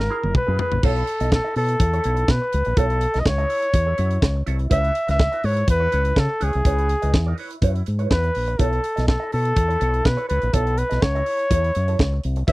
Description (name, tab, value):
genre	disco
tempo	124 BPM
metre	4/4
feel	straight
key	unclear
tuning	A4 = 441 Hz
part	breathy flugelhorn	melody	0.0-12.5 s	G#4 to E5	-23 LUFS	equal	none
part	mellow electric guitar	accompaniment	0.0-12.5 s	Fb4 to D#5	-31 LUFS	right 5 dB	wah
part	fingered electric bass with an envelope filter	bass	0.0-12.5 s	Gb1 to C#3	-22 LUFS	equal	none
part	tight funk drum kit	drums	0.0-12.5 s	crash cymbal, hi-hat, kick drum, snare drum, toms	-20 LUFS	equal	none
room	little or no reverb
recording	dry, close 1970s-style studio recording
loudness	-18 LUFS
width	side -20 dB against mid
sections	0.8-12.5 A section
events	drum fill 0.0-0.8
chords	0.0 Gb9; 0.8 B9sus4; 4.7 C#m7; 8.6 B9sus4